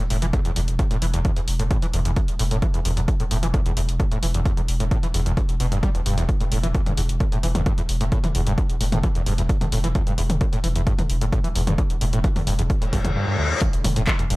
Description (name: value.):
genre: driving peak-time techno.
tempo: 131 BPM.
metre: 4/4.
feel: straight.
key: E minor.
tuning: A4 = 443 Hz.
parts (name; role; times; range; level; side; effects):
screaming distorted acid line; riff; 0.0-14.4 s; E1 to G3; -26 LUFS; equal; distortion, ensemble chorus, sidechain pumping, analog delay.
saturated sub bass; bass; 0.0-14.4 s; E1; -24 LUFS; equal; overdrive, sidechain pumping, low-pass filter.
punchy analog drum machine; drums; 0.1-14.4 s; handclaps, hi-hat, toms; -29 LUFS; left 1 dB; sidechain pumping on hats, sidechain pumping on cymbals, sidechain pumping on toms.
electronic kick drum; drums; 0.3-14.2 s; none; -22 LUFS; equal; none.
reverse cymbal and impact; sound effects; 12.9-14.4 s; none; -27 LUFS; left 3 dB; none.
room: digital ambience.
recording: echo-heavy mix.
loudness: -19 LUFS.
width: side -21 dB against mid.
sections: 0.0-13.6 A section.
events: reverse cymbal 12.9-13.6; impact 13.6-14.4.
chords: none.